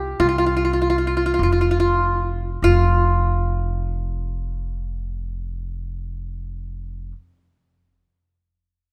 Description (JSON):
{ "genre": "Turkish makam ensemble", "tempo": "94 BPM (eighths)", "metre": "10/8", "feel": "straight", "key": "unclear", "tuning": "A4 = 440 Hz", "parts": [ { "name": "qanun", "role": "melody", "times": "0.0-7.1 s", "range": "F4 to G4", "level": "-22 LUFS", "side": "equal", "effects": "none" }, { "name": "upright bass", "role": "bass", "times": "0.0-7.1 s", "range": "F1 to C2", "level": "-25 LUFS", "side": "equal", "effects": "none" } ], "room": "moderate concert hall reverb, RT60 2.3 s", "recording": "none", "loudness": "-20 LUFS", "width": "mono", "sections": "0.0-2.6 A section; 2.6-8.9 B section", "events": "slowing down 0.0-2.6", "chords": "none" }